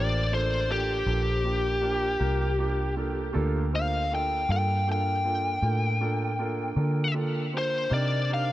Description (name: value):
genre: slow blues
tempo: 53 BPM (dotted quarters)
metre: 12/8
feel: straight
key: G minor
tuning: A4 = 440 Hz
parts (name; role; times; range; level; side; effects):
- biting lead guitar; melody; 0.0-8.5 s; G4 to G5; -28 LUFS; left 1 dB; overdrive
- warm upright piano; accompaniment; 0.0-8.5 s; Bb3 to C5; -33 LUFS; right 3 dB; none
- vintage muted fingered electric bass; bass; 0.0-8.5 s; A1 to D3; -28 LUFS; equal; none
room: moderate huge ambient reverb, RT60 4.6 s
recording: dreamy mix soaked in reverb, faint mains hum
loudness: -24 LUFS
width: side -15 dB against mid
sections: 0.0-8.5 A section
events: lead electric guitar solo 0.0-8.5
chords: 0.0 Gm9; 7.9 Cm9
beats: 1.07 2.21 | 3.35 4.49 5.63 6.77 | 7.91